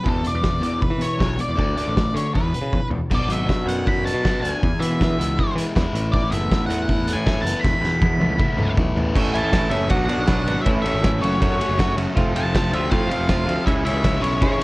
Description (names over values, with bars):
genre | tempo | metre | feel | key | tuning
indie rock | 159 BPM | 4/4 | straight | A major | A4 = 439 Hz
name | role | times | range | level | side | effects
octave-fuzz lead guitar | melody | 0.0-14.6 s | A4 to B5 | -26 LUFS | equal | distortion, slapback echo
overdriven semi-hollow guitar | riff | 0.0-14.6 s | E2 to A4 | -26 LUFS | left 2 dB | none
modern bright picked electric bass | bass | 0.1-14.6 s | E1 to E3 | -25 LUFS | equal | none
loose indie drum kit | drums | 0.1-14.6 s | crash cymbal, hi-hat, kick drum, ride cymbal, snare drum, toms | -22 LUFS | equal | none
twangy electric guitar | riff | 3.1-14.6 s | A2 to A4 | -27 LUFS | right 3 dB | lush chorus, slapback echo
ensemble organ-string | sustained chords | 9.2-14.6 s | G#4 to D6 | -38 LUFS | equal | none
glassy synth bell | second line | 9.3-14.6 s | G#4 to F5 | -34 LUFS | left 2 dB | none
room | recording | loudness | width
little or no reverb | worn, warbling old tape, cassette tape, warbly pitch drift | -18 LUFS | side -21 dB against mid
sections
0.0-3.1 A section; 3.1-9.1 B section; 9.1-14.6 C section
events
drum fill 2.7-3.1, 7.6-9.1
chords
0.1 E5; 1.6 D5; 2.3 E5; 3.1 Bm; 4.6 E; 5.9 Asus2; 7.6 Esus4; 9.1 A; 9.9 Bm; 10.7 A; 11.2 F#m; 12.2 F; 13.7 C#m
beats
| 0.06 0.44 0.82 1.20 | 1.58 1.96 2.34 2.72 | 3.10 3.48 3.86 4.24 | 4.62 5.00 5.37 5.75 | 6.13 6.51 6.88 7.26 | 7.64 8.02 8.39 8.77 | 9.15 9.52 9.90 10.28 | 10.65 11.03 11.40 11.78 | 12.16 12.53 12.91 13.29 | 13.66 14.04 14.41